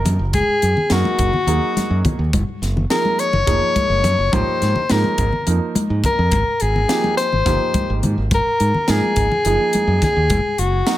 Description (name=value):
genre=electric jazz fusion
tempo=211 BPM (eighths)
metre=7/8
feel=straight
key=F# major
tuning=A4 = 440 Hz
part: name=breathy soprano saxophone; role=melody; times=0.0-11.0 s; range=F#4 to C#5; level=-19 LUFS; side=left 2 dB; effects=tape echo
part: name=clear grand piano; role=accompaniment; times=0.0-11.0 s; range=E#3 to A#4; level=-25 LUFS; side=right 6 dB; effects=none
part: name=modern bright fingered electric bass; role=bass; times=0.0-10.8 s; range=E#1 to G#2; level=-19 LUFS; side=equal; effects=none
part: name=crisp fusion drum kit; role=drums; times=0.1-11.0 s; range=hi-hat, kick drum, snare drum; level=-23 LUFS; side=equal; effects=none
part: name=congas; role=percussion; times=0.1-10.4 s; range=none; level=-25 LUFS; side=left 2 dB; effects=none
room=light reverb, studio ambience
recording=none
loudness=-15 LUFS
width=side -14 dB against mid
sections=0.0-11.0 A section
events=none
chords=0.0 F#maj9; 4.3 G#maj9; 9.4 F#maj9